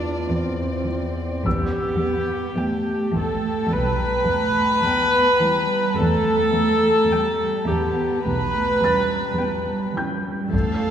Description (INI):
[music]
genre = cinematic, suspense film score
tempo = 53 BPM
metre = 4/4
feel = straight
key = E phrygian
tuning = A4 = 440 Hz
[part]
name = warm chamber violin section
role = melody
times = 0.0-10.9 s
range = D5 to G5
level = -38 LUFS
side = left 3 dB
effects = none
[part]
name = rich chamber viola section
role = accompaniment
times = 0.0-10.9 s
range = F4 to B4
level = -21 LUFS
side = equal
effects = none
[part]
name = warm studio cello section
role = riff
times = 0.0-10.9 s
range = E2 to E3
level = -28 LUFS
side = equal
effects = none
[part]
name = clear chamber double bass section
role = bass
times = 0.0-10.9 s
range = B1 to E2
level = -29 LUFS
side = equal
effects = none
[part]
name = dark chamber cello section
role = bass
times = 0.0-10.9 s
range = G3 to D4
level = -26 LUFS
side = right 1 dB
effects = none
[part]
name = felt-muted upright piano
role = texture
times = 0.0-10.9 s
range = G5 to A6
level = -31 LUFS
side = left 2 dB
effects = none
[part]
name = taiko ensemble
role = drums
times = 1.5-3.7, 10.5-10.9 s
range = none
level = -29 LUFS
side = left 1 dB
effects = none
[part]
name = warm chamber violin section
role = texture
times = 1.5-9.9 s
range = G5 to A#5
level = -32 LUFS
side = left 5 dB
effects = none
[sound]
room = wet concert hall reverb, RT60 2.4 s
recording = heard from further back in the room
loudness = -19 LUFS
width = side -9 dB against mid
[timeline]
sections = 0.0-10.9 A section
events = none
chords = 0.0 Dmadd9/E; 1.5 Em